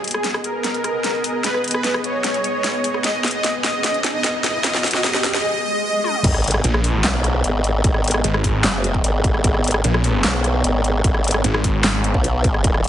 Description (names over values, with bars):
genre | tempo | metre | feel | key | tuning
heavy wobble dubstep | 150 BPM | 4/4 | half-time | G# minor | A4 = 440 Hz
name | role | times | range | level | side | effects
supersaw pad | sustained chords | 0.0-12.9 s | A#3 to D#5 | -27 LUFS | equal | sidechain pumping, low-pass filter
dubstep drum kit | drums | 0.0-12.9 s | crash cymbal, handclaps, hi-hat, rim click, snare drum, toms | -22 LUFS | equal | overdrive, high-pass filter on hats, high-pass filter on snare, high-pass filter on toms, high-pass filter on cymbals
riser, swell and impact | sound effects | 0.0-7.8 s | none | -29 LUFS | right 1 dB | none
soft supersaw | melody | 0.1-6.2 s | G#4 to D#5 | -23 LUFS | equal | low-pass filter, ping-pong delay
formant-sweep wobble bass | bass | 6.2-12.9 s | D#1 to B1 | -19 LUFS | equal | chorus, overdrive
electronic kick drum | drums | 6.2-12.7 s | none | -20 LUFS | equal | none
snarling distorted saw bass | bass | 6.6-12.1 s | G#1 to A#1 | -18 LUFS | equal | distortion, overdrive
room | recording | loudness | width
light reverb, digital ambience | heavily compressed radio sound, nothing above 11.0 kHz | -17 LUFS | side -11 dB against mid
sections
0.0-6.2 A section; 6.2-12.9 B section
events
build-up 0.0-6.2; drum fill 0.0-5.4, 6.0; riser 0.0-5.4; filter sweep on supersaw synth 0.0-6.2; swell 5.4-6.2; drop 6.2-12.9; impact 6.2-7.8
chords
0.0 G#m